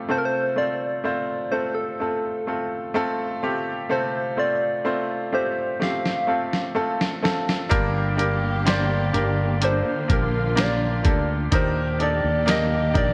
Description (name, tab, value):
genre	pop ballad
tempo	63 BPM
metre	4/4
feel	straight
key	unclear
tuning	A4 = 440 Hz
part	bright grand piano	accompaniment	0.0-13.1 s	F2 to C5	-28 LUFS	equal	none
part	soft struck synth lead	melody	0.1-13.1 s	A4 to F5	-28 LUFS	equal	chorus
part	lo-fi sampler-style drum kit	drums	5.8-13.1 s	hi-hat, kick drum, snare drum	-26 LUFS	equal	gated reverb
part	warm studio string section	sustained chords	7.7-13.1 s	D3 to G4	-33 LUFS	equal	none
part	fretless electric bass	bass	7.7-13.1 s	G1 to Eb2	-27 LUFS	equal	none
room	moderate lush hall reverb, RT60 2.6 s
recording	bright 1980s-style digital production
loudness	-23 LUFS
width	mono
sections	0.1-13.1 A section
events	drum fill 5.8-7.7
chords	0.1 F; 7.7 Gm; 11.5 Ebmaj7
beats	| 0.10 1.05 2.01 2.96 | 3.91 4.86 5.82 6.77 | 7.72 8.67 9.62 10.58 | 11.53 12.48